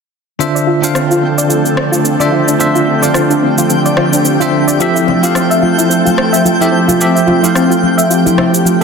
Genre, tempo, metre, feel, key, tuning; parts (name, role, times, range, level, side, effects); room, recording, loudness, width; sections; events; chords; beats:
sunset chillout; 109 BPM; 4/4; swing 57% on 16ths; D minor; A4 = 440 Hz
bell-like tine electric piano; accompaniment; 0.4-8.8 s; D3 to F5; -14 LUFS; equal; medium stereo tremolo, auto-pan, vintage 12-bit sampler grit, digital delay
ethereal airy pad; sustained chords; 0.8-8.8 s; F3 to A4; -15 LUFS; left 1 dB; ensemble chorus, built-in reverb
soft round pluck; arpeggios; 0.4-8.8 s; C4 to E5; -16 LUFS; right 1 dB; wide subtle chorus, digital delay
electronic cabasa and rim click; drums; 0.4-8.8 s; -18 LUFS; equal
twinkling granular texture; texture; 0.8-8.8 s; G5; -21 LUFS; right 1 dB; built-in reverb
congas; percussion; 5.1-8.8 s; -21 LUFS; left 1 dB
wet plate reverb, RT60 2.0 s; dense, heavily limited modern master; -9 LUFS; side -5 dB against mid
0.4-8.8 A section
filter sweep on synth pluck 0.4-8.8
0.4 Dm7; 4.8 Fmaj7
| 0.41 0.95 1.51 2.06 | 2.61 3.16 3.71 4.26 | 4.81 5.36 5.91 6.46 | 7.01 7.56 8.11 8.66